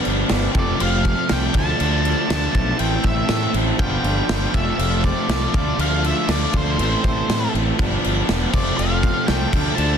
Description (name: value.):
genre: indie rock.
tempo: 120 BPM.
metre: 4/4.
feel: straight.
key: unclear.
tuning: A4 = 440 Hz.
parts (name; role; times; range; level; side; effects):
combo organ; sustained chords; 0.0-10.0 s; D4 to A5; -34 LUFS; equal; none.
crunchy overdriven guitar; riff; 0.0-10.0 s; E3 to F4; -23 LUFS; right 1 dB; none.
loose indie drum kit; drums; 0.0-9.9 s; crash cymbal, kick drum, snare drum; -22 LUFS; equal; none.
fuzz fingered electric bass; bass; 0.1-10.0 s; E1 to A2; -23 LUFS; equal; overdrive.
octave-fuzz lead guitar; melody; 0.6-10.0 s; C5 to A5; -26 LUFS; equal; distortion, plate reverb.
room: little or no reverb.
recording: dense, heavily limited modern master.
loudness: -17 LUFS.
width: side -8 dB against mid.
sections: 0.0-10.0 A section.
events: none.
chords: 0.0 G7; 0.6 F6; 1.6 Dm7; 2.8 Am7; 3.8 G7; 4.5 F6; 5.5 Dm7; 6.8 Am7; 7.8 G7; 8.5 F6.